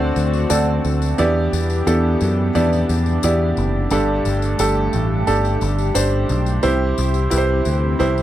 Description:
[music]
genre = piano-driven pop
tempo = 88 BPM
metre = 4/4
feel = straight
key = G major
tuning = A4 = 440 Hz
[part]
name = clear grand piano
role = accompaniment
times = 0.0-8.2 s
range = G2 to D5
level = -19 LUFS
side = right 2 dB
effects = none
[part]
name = chorused pulse-width pad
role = sustained chords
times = 0.0-8.2 s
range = C3 to G4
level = -26 LUFS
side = left 1 dB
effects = none
[part]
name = picked electric bass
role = bass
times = 0.0-8.2 s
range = F#1 to F#2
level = -19 LUFS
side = left 1 dB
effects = none
[part]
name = tambourine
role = percussion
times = 0.2-8.2 s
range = none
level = -31 LUFS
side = left 27 dB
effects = none
[sound]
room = little or no reverb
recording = dry, close 1970s-style studio recording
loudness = -16 LUFS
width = side -13 dB against mid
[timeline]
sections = 0.0-8.2 A section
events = none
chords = 0.0 D7; 1.2 Em7; 3.9 Gsus2; 6.6 C

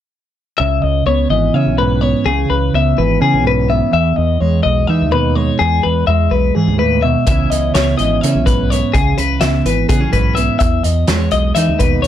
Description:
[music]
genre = math rock and midwest emo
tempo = 251 BPM (eighths)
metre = 7/8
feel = straight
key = unclear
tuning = A4 = 440 Hz
[part]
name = mellow electric guitar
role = accompaniment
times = 0.6-12.1 s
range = E2 to E4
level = -18 LUFS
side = right 6 dB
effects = spring reverb
[part]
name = twelve-string electric guitar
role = arpeggios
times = 0.6-12.1 s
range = G#4 to E5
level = -17 LUFS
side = left 8 dB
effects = none
[part]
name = growling fingered electric bass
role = bass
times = 0.6-12.1 s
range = G#1 to E3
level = -17 LUFS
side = equal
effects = overdrive
[part]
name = loose indie drum kit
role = drums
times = 7.3-12.1 s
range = hi-hat, kick drum, snare drum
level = -18 LUFS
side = equal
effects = none
[sound]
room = little or no reverb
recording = dark, warm production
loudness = -12 LUFS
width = side -11 dB against mid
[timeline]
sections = 0.6-12.1 A section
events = none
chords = 0.6 C#m7; 3.9 Emaj7; 7.3 C#m7; 10.6 Emaj7

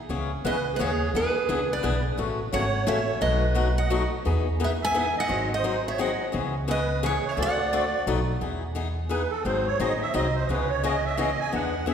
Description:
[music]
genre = acoustic string swing (jazz manouche)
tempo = 173 BPM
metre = 3/4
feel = swing 61% on 8ths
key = C# minor, E major from 8.4 s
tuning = A4 = 441 Hz
[part]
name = picked swing-style acoustic guitar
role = accompaniment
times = 0.1-11.9 s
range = B2 to A4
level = -28 LUFS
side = left 4 dB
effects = none
[part]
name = upright bass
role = bass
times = 0.1-11.9 s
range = G#1 to E2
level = -29 LUFS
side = equal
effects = none
[part]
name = musette accordion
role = second line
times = 0.4-11.9 s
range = G#4 to G#5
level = -29 LUFS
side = right 5 dB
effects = none
[part]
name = picked steel-string acoustic guitar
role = melody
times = 0.5-8.1 s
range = B4 to G#5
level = -29 LUFS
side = right 1 dB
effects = none
[sound]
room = wet concert hall reverb, RT60 2.2 s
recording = recorded in a church or concert hall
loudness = -23 LUFS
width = side -8 dB against mid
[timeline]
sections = 0.1-8.4 A section; 8.4-11.9 B section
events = accordion solo 8.4-11.9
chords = 0.1 C#m7; 1.1 E7; 2.2 A6; 3.2 B7; 4.3 Emaj7; 5.3 G#7; 6.3 C#m7; 7.4 D7; 8.1 B7; 8.4 Emaj7; 9.5 G#7; 10.5 C#m7

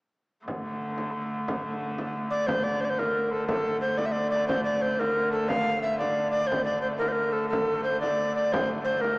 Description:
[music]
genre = medieval dance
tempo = 119 BPM (dotted quarters)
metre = 6/8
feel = straight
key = unclear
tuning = A4 = 440 Hz
[part]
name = rich hurdy-gurdy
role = drone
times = 0.5-9.2 s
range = D3 to A3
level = -32 LUFS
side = equal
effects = none
[part]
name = frame drum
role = percussion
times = 0.5-9.2 s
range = none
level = -34 LUFS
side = equal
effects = none
[part]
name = breathy bright bass recorder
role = melody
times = 2.3-9.2 s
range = A4 to F5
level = -25 LUFS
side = equal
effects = none
[sound]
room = wet church reverb, RT60 3.7 s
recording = worn, warbling old tape, cassette tape, warbly pitch drift, small speaker sound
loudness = -24 LUFS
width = side -31 dB against mid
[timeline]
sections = 0.5-2.5 A section; 2.5-9.2 B section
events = none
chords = none

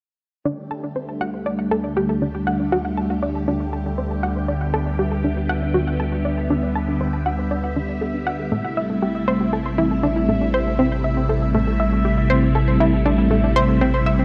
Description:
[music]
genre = ambient, sequencer-driven space music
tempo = 119 BPM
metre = 4/4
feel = straight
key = unclear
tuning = A4 = 440 Hz
[part]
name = phased string machine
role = sustained chords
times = 0.5-14.2 s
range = C3 to G4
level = -24 LUFS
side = equal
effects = ensemble chorus, phaser
[part]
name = analog pluck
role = riff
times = 0.5-14.2 s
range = A3 to A5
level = -25 LUFS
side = equal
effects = chorus, tape echo
[part]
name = warm sub bass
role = bass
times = 0.5-14.2 s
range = A1 to D2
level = -28 LUFS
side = equal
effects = none
[part]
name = bubbling stepped-filter texture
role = texture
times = 0.8-14.2 s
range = E5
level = -35 LUFS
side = equal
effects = chorus, built-in reverb
[sound]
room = wet plate reverb, RT60 2.7 s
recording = none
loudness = -21 LUFS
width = mono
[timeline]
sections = 0.5-14.2 A section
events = fade-in on sub bass 0.5-14.2; fade-in on synth texture 0.5-14.2; filter sweep on synth arpeggio sound 0.5-14.2; filter sweep on string machine 0.5-14.2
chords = 0.5 Dsus4; 8.5 Am7

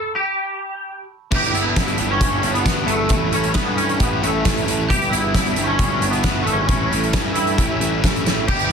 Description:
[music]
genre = indie rock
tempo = 134 BPM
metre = 4/4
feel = straight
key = G lydian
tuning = A4 = 438 Hz
[part]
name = twangy electric guitar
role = melody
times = 0.0-8.7 s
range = A3 to A4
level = -22 LUFS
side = equal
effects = ensemble chorus, slapback echo
[part]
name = biting overdriven guitar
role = riff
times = 1.3-8.7 s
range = G2 to E4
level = -25 LUFS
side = left 12 dB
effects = none
[part]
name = fuzz guitar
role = riff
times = 1.3-8.7 s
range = E3 to G4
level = -26 LUFS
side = right 10 dB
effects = distortion, ensemble chorus, slapback echo
[part]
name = fuzz picked electric bass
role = bass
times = 1.3-8.7 s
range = G1 to G2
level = -25 LUFS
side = equal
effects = overdrive
[part]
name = loose indie drum kit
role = drums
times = 1.3-8.7 s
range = crash cymbal, hi-hat, kick drum, snare drum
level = -21 LUFS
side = equal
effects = none
[part]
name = glockenspiel with hard plastic mallets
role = second line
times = 1.4-8.7 s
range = A5 to G6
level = -34 LUFS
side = right 11 dB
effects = none
[sound]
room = light reverb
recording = dense, heavily limited modern master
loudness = -16 LUFS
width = side -6 dB against mid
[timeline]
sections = 0.0-1.3 A section; 1.3-8.7 A section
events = stop 0.0-1.3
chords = 0.0 N.C.; 1.3 G6; 3.1 A7; 4.9 G6; 6.7 A7

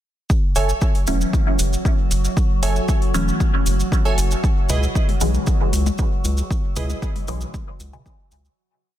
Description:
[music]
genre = dub techno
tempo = 116 BPM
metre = 4/4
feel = straight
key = F# minor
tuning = A4 = 440 Hz
[part]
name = electronic kick drum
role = drums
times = 0.3-8.2 s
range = none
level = -20 LUFS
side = equal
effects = overdrive
[part]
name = maracas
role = percussion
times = 0.3-8.6 s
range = none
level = -31 LUFS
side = right 2 dB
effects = none
[part]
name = metallic inharmonic drone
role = texture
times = 0.8-8.6 s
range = F#3 to F#4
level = -29 LUFS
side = right 1 dB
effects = chorus, built-in reverb, sidechain pumping
[part]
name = wavetable chord stab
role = riff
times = 0.6-7.0 s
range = E4 to G#5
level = -28 LUFS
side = right 4 dB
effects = sidechain pumping, dub echo
[part]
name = round analog bass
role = bass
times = 0.6-8.5 s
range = E1 to C#2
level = -21 LUFS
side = equal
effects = sidechain pumping
[part]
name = electronic hi-hat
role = drums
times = 0.6-8.4 s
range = none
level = -31 LUFS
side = left 3 dB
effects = overdrive
[part]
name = filtered dub chord stab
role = stabs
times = 1.1-8.0 s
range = B2 to C#4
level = -26 LUFS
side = left 1 dB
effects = phaser, sidechain pumping, dub echo
[part]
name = electronic toms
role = percussion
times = 4.7-7.6 s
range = none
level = -32 LUFS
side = left 6 dB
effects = sidechain pumping on toms, dub echo
[sound]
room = digital ambience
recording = dense, heavily limited modern master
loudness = -17 LUFS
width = side -12 dB against mid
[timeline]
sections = 0.3-8.6 groove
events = fade-out 5.8-8.6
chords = 0.3 F#m7; 4.4 C#m7

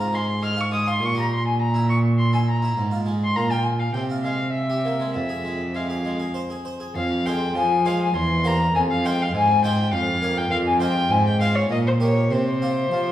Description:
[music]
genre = classical, baroque-style sonata movement with continuo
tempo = 101 BPM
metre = 3/4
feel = straight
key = F minor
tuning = A4 = 441 Hz
[part]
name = dark violin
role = melody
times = 0.0-13.1 s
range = C5 to F6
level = -23 LUFS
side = left 2 dB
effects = none
[part]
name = harpsichord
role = accompaniment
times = 0.0-13.1 s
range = E2 to Db5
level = -28 LUFS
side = right 1 dB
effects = none
[part]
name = dark cello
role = bass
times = 0.0-13.1 s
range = E2 to F3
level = -23 LUFS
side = right 1 dB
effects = none
[sound]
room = wet recital hall reverb, RT60 1.4 s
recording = heard from further back in the room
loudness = -19 LUFS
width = side -12 dB against mid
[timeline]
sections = 0.0-7.0 A section; 7.0-13.1 B section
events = none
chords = 0.0 Fm/Ab; 1.0 Bbm13; 1.6 Bb(b5, no3); 2.8 Fm/Ab; 3.4 Bb5; 4.0 Fm/C; 4.6 C7; 5.2 Fm; 8.2 C7/E; 8.8 Fm; 9.9 Bbm/F; 10.5 Fm; 11.7 Gdim/Bb; 12.3 Csus4

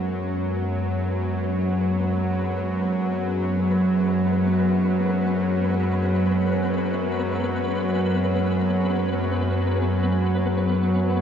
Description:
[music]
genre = ambient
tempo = free time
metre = none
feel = none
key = unclear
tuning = A4 = 440 Hz
[part]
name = sweeping resonant pad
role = sustained chords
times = 0.0-11.2 s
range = F#3 to F#4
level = -31 LUFS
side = left 1 dB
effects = chorus
[part]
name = bowed-like drone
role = drone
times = 0.0-11.2 s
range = F#2 to F#3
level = -21 LUFS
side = equal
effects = built-in reverb
[part]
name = flickering grainy texture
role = texture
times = 0.0-11.2 s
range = B3 to B4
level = -30 LUFS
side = left 1 dB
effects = built-in reverb
[sound]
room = moderate spring reverb, RT60 2.7 s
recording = none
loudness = -20 LUFS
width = side -8 dB against mid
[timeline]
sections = 0.0-11.2 A section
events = fade-in on synth texture 0.0-11.2; fade-out on analog synth pad 0.0-11.2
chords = 0.0 F#sus2

